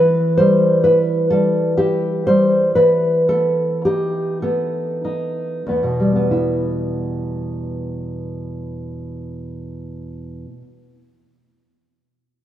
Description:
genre	romantic piece for solo classical guitar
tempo	29-46 BPM (dotted quarters)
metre	6/8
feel	rubato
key	E minor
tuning	A4 = 440 Hz
part	nylon-string guitar	solo	0.0-11.1 s	E2 to C5	-16 LUFS	equal	none
room	moderate plate reverb, RT60 2.6 s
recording	heard from further back in the room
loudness	-16 LUFS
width	side -12 dB against mid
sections	0.0-6.3 A section; 6.3-9.8 B section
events	slowing down 0.0-6.3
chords	0.0 Em; 2.8 B7/E; 6.3 Em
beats	1.30 | 2.76 4.42 | 6.33 8.09

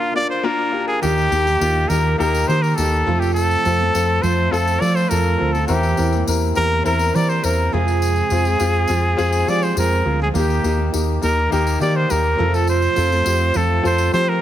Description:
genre	piano-driven pop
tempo	103 BPM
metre	4/4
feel	straight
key	unclear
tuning	A4 = 440 Hz
part	clear trumpet	melody	0.0-14.4 s	F4 to D5	-20 LUFS	equal	none
part	warm grand piano	accompaniment	0.0-14.4 s	Bb2 to C5	-23 LUFS	left 4 dB	none
part	picked steel-string acoustic guitar	riff	1.0-14.4 s	F2 to G4	-25 LUFS	right 9 dB	none
part	fingered electric bass	bass	1.0-14.4 s	D2 to F3	-20 LUFS	equal	none
part	tambourine	percussion	1.0-14.3 s	none	-33 LUFS	left 6 dB	none
room	light reverb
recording	none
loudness	-16 LUFS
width	side -11 dB against mid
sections	0.0-1.0 A section; 1.0-14.4 B section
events	break 0.0-1.0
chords	0.0 Bb; 1.0 Eb; 3.1 F; 5.7 C7/E; 7.7 Fm; 10.3 Eb; 12.4 F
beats	0.44 | 1.02 1.61 2.19 2.77 | 3.36 3.94 4.52 5.11 | 5.69 6.27 6.85 7.44 | 8.02 8.60 9.18 9.77 | 10.35 10.93 11.51 12.09 | 12.68 13.26 13.84

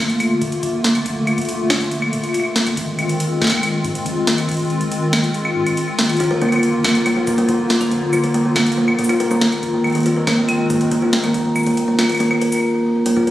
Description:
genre	IDM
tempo	140 BPM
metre	4/4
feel	straight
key	unclear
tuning	A4 = 442 Hz
part	hollow soft pad	sustained chords	0.0-12.6 s	D3 to F4	-21 LUFS	left 1 dB	ensemble chorus
part	warm sub bass	bass	0.0-13.3 s	Eb1 to Bb2	-30 LUFS	equal	none
part	booming analog drum machine	drums	0.1-13.3 s	claves, hi-hat, shaker, snare drum	-21 LUFS	equal	digital delay
part	electronic kick drum	drums	0.4-13.3 s	none	-31 LUFS	equal	none
part	kalimba	arpeggios	6.2-13.3 s	Bb3 to Bb4	-16 LUFS	equal	ping-pong delay
room	light reverb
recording	recorded on a phone in the room, studio reverb, compression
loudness	-15 LUFS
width	side -14 dB against mid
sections	0.0-13.1 A section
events	none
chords	0.0 Bbmaj7; 2.8 Ab6; 6.2 Bb; 9.6 Ab6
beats	0.20 0.63 | 1.06 1.49 1.92 2.34 | 2.77 3.20 3.63 4.06 | 4.49 4.92 5.34 5.77 | 6.20 6.63 7.06 7.49 | 7.92 8.34 8.77 9.20 | 9.63 10.06 10.49 10.92 | 11.34 11.77 12.20 12.63 | 13.06

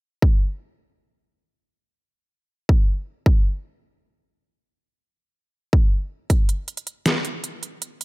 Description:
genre	future bass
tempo	158 BPM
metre	4/4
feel	half-time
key	none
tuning	none
part	electronic kick drum	drums	0.2-0.3, 2.7-3.3, 5.7-6.4 s	none	-17 LUFS	equal	none
part	dubstep drum kit	drums	6.3-8.0 s	hi-hat, snare drum	-23 LUFS	equal	none
room	digital ambience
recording	none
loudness	-19 LUFS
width	side -21 dB against mid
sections	0.2-8.0 A section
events	none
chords	none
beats	| 0.22 0.60 0.98 1.36 | 1.74 2.12 2.50 2.88 | 3.26 3.64 4.02 4.40 | 4.78 5.16 5.54 5.92 | 6.30 6.68 7.06 7.44 | 7.82

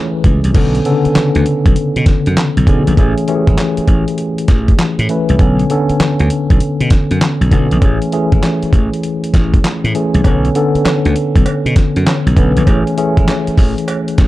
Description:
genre	R&B, new jack swing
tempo	99 BPM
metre	4/4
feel	swing 66% on 16ths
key	B dorian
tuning	A4 = 440 Hz
part	tine electric piano	accompaniment	0.0-14.3 s	C#3 to B4	-15 LUFS	left 1 dB	medium stereo tremolo
part	slap bass	bass	0.2-14.3 s	G#1 to B2	-14 LUFS	equal	none
part	dusty soul sampler-style drum kit	drums	0.2-14.3 s	crash cymbal, handclaps, hi-hat, kick drum, snare drum	-13 LUFS	equal	none
part	cowbell	percussion	10.2-14.1 s	none	-28 LUFS	right 4 dB	none
room	little or no reverb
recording	dark, warm production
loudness	-10 LUFS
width	side -16 dB against mid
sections	0.5-14.3 A section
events	none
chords	0.0 Amaj7; 0.5 Bm9; 3.0 Amaj7; 5.4 Bm9; 7.8 Amaj7; 10.2 Bm9; 12.7 Amaj7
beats	| 0.55 1.15 1.76 2.37 | 2.97 3.58 4.18 4.79 | 5.40 6.00 6.61 7.21 | 7.82 8.43 9.03 9.64 | 10.24 10.85 11.46 12.06 | 12.67 13.28 13.88

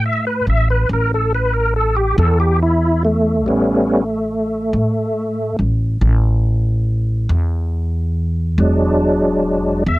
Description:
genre	slow blues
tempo	47 BPM (dotted quarters)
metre	12/8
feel	straight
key	unclear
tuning	A4 = 440 Hz
part	bright tonewheel organ	sustained chords	0.0-10.0 s	F#3 to E5	-17 LUFS	equal	slow rotary speaker, chorus vibrato, cassette tape
part	upright bass	bass	0.0-10.0 s	E1 to A2	-17 LUFS	equal	none
room	little or no reverb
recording	home recording on cassette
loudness	-14 LUFS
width	side -18 dB against mid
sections	0.0-10.0 A section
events	tonewheel organ solo 0.0-10.0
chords	0.0 A5; 8.6 E7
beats	0.90 2.18 | 3.46 4.74 6.02 7.30 | 8.59 9.87

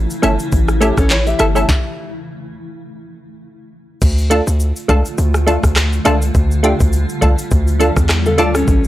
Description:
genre	dancehall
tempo	103 BPM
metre	4/4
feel	swing 56% on 16ths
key	D harmonic minor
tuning	A4 = 440 Hz
part	granular cloud pad	sustained chords	0.0-8.9 s	C#3 to F4	-25 LUFS	left 1 dB	built-in reverb, sidechain pumping
part	hard-hitting 808-style bass	bass	0.0-8.9 s	G1 to E2	-16 LUFS	equal	none
part	afro-pop drum kit	drums	0.1-8.9 s	crash cymbal, handclaps, hi-hat, kick drum, rim click, shaker, snare drum	-16 LUFS	equal	none
part	egg shaker and timbales	percussion	0.1-8.9 s	none	-35 LUFS	equal	none
part	wavetable chord stab	accompaniment	0.2-8.5 s	A3 to A4	-16 LUFS	equal	none
part	nylon-string guitar	arpeggios	0.8-2.1, 8.3-8.8 s	C#4 to F5	-19 LUFS	left 2 dB	none
room	digital ambience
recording	dry, gritty hardware recording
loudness	-12 LUFS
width	side -15 dB against mid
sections	0.0-4.0 A section; 4.0-8.9 B section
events	stop 1.7-4.0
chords	0.0 A; 4.0 Dm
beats	0.52 1.10 | 1.69 2.27 2.85 3.44 | 4.02 4.60 5.18 5.76 | 6.35 6.93 7.51 8.10 | 8.68

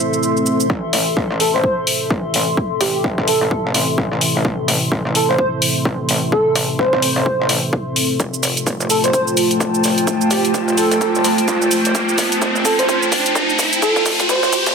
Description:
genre	bass house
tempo	128 BPM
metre	4/4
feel	swing 59% on 16ths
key	A minor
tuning	A4 = 440 Hz
part	dark analog pad	sustained chords	0.0-14.7 s	A3 to C5	-22 LUFS	equal	chorus, sidechain pumping
part	electronic shaker and hi-hat	drums	0.0-14.7 s	none	-20 LUFS	equal	none
part	warbly tape-like pad	texture	0.0-14.7 s	F4 to C6	-23 LUFS	equal	chorus, built-in reverb, phaser, sidechain pumping
part	metallic wobble bass	bass	0.7-14.7 s	F1 to F2	-24 LUFS	equal	distortion, chorus, sidechain pumping, high-pass filter
part	electronic kick drum	drums	0.7-14.7 s	none	-22 LUFS	equal	high-pass filter on kick
part	airy dreamy lead	melody	1.4-14.7 s	G4 to C5	-20 LUFS	right 1 dB	chorus, tape echo
part	riser	sound effects	9.7-14.7 s	none	-20 LUFS	equal	none
room	moderate digital room reverb, RT60 1.0 s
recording	dense, heavily limited modern master, high-pass filter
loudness	-14 LUFS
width	side -6 dB against mid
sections	0.7-14.7 A section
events	build-up 0.7-14.7; filter sweep on analog synth pad 0.7-14.7; drum fill 8.2-14.7; riser 9.7-14.7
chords	0.0 Am; 8.2 F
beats	0.23 | 0.70 1.17 1.64 2.10 | 2.57 3.04 3.51 3.98 | 4.45 4.92 5.39 5.85 | 6.32 6.79 7.26 7.73 | 8.20 8.67 9.14 9.60 | 10.07 10.54 11.01 11.48 | 11.95 12.42 12.89 13.35 | 13.82 14.29

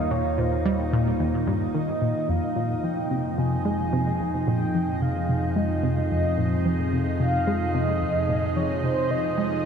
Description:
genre	ambient, sequencer-driven space music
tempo	110 BPM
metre	4/4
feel	straight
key	F minor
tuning	A4 = 440 Hz
part	mellow horn-like synth lead	melody	0.0-9.7 s	C5 to Ab5	-29 LUFS	right 1 dB	chorus, vintage 12-bit sampler grit, tape echo
part	evolving wavetable pad	sustained chords	0.0-9.7 s	C3 to Ab4	-28 LUFS	right 1 dB	chorus, built-in reverb
part	tight sequenced synth	riff	0.0-9.6 s	Eb2 to Ab3	-26 LUFS	equal	chorus, tape echo
part	analog drone	bass	0.0-9.7 s	Eb2 to F2	-29 LUFS	equal	chorus
part	bubbling stepped-filter texture	texture	0.0-9.7 s	Eb5	-40 LUFS	right 4 dB	chorus, built-in reverb
room	wet huge ambient reverb, RT60 8.4 s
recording	dreamy mix soaked in reverb, cassette tape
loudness	-22 LUFS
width	side -7 dB against mid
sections	0.0-9.7 A section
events	fade-in on synth texture 0.0-9.7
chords	0.0 Eb; 2.3 Fm7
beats	| 0.11 0.66 1.20 1.75 | 2.29 2.84 3.38 3.93 | 4.47 5.02 5.56 6.11 | 6.66 7.20 7.75 8.29 | 8.84 9.38

